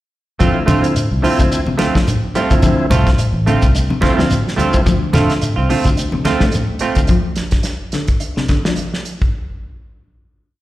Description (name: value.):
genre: afrobeat.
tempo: 108 BPM.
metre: 4/4.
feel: swing 56% on 16ths.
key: D minor.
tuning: A4 = 439 Hz.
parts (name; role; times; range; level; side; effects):
semi-hollow electric guitar; arpeggios; 0.4-8.9 s; C3 to A3; -22 LUFS; left 3 dB; spring reverb, slapback echo.
semi-hollow electric guitar; stabs; 0.4-7.0 s; A3 to F4; -19 LUFS; right 4 dB; analog chorus, slapback echo.
fingered electric bass; bass; 0.4-7.1 s; A1 to D3; -18 LUFS; equal; none.
damped 70s drum kit; drums; 0.4-9.3 s; hi-hat, kick drum, snare drum; -18 LUFS; equal; none.
congas; percussion; 0.4-6.7 s; none; -22 LUFS; equal; none.
shekere; percussion; 0.4-7.1 s; none; -23 LUFS; left 1 dB; slapback echo.
bright tonewheel organ; accompaniment; 0.5-4.8 s; F3 to E4; -20 LUFS; equal; slow rotary speaker, overdrive, slapback echo.
room: light reverb.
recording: live gig heard through the venue's PA, recital hall reverb.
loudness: -13 LUFS.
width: side -16 dB against mid.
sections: 0.4-9.3 groove.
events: none.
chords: 0.4 Dm7.